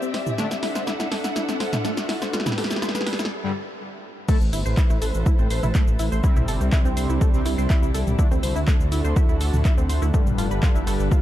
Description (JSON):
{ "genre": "melodic techno", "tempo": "123 BPM", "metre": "4/4", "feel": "straight", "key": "A minor", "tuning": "A4 = 439 Hz", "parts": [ { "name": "dark studio string section", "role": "sustained chords", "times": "0.0-11.2 s", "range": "C3 to F#5", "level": "-32 LUFS", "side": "equal", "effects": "vintage 12-bit sampler grit, sidechain pumping" }, { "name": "tight sequenced synth", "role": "arpeggios", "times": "0.0-11.2 s", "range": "A3 to C6", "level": "-31 LUFS", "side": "equal", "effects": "chorus, sidechain pumping, tape echo" }, { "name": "punchy analog drum machine", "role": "drums", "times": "0.0-11.2 s", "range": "crash cymbal, handclaps, hi-hat, rim click, shaker, snare drum, toms", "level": "-29 LUFS", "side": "equal", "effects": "overdrive" }, { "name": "riser", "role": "sound effects", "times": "0.0-3.3 s", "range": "none", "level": "-36 LUFS", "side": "right 1 dB", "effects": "none" }, { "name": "airy breathy pad", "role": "texture", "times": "0.0-11.2 s", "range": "C4 to B5", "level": "-33 LUFS", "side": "right 1 dB", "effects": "chorus, sidechain pumping" }, { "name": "analog synth brass", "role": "stabs", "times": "0.4-0.5, 3.4-11.2 s", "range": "G2 to A4", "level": "-32 LUFS", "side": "left 2 dB", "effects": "chorus, sidechain pumping, tape echo" }, { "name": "electronic kick drum", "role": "drums", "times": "4.3-11.2 s", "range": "none", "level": "-19 LUFS", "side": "equal", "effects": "overdrive" }, { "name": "swelling detuned saw bass", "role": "bass", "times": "4.4-11.1 s", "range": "F1 to D2", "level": "-23 LUFS", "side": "equal", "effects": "sidechain pumping" } ], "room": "little or no reverb", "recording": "dark, warm production", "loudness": "-19 LUFS", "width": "side -13 dB against mid", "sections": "0.0-4.3 A section; 4.3-11.2 B section", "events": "build-up 0.0-4.3; drum fill 0.0-3.3; riser 0.0-3.3; filter sweep on synth arpeggio sound 0.0-4.3; break 3.3-4.3; drop 4.3-11.2", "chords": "0.4 D7; 2.3 G; 4.3 Am; 6.2 Cadd9; 8.2 D7; 10.1 G7" }